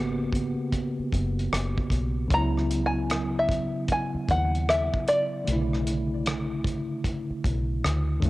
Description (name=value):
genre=R&B, neo-soul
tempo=76 BPM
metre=4/4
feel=swing 63% on 16ths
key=unclear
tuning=A4 = 440 Hz
part: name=tine electric piano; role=accompaniment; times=0.0-8.3 s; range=C#3 to G4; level=-29 LUFS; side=equal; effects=medium stereo tremolo, cassette tape
part: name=deep dub fingered electric bass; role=bass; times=0.0-8.3 s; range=F#1 to E2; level=-28 LUFS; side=equal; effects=none
part: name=cloth-damped thuddy drum kit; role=drums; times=0.3-8.3 s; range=hi-hat, kick drum, rim click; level=-30 LUFS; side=equal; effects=cassette tape
part: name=open-back banjo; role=melody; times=2.3-6.2 s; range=D5 to A#5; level=-27 LUFS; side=equal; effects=cassette tape
room=light reverb, studio ambience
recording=home recording on cassette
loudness=-24 LUFS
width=side -18 dB against mid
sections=0.0-8.3 A section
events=none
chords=0.0 G#m11; 2.3 C#m11; 5.5 Bm11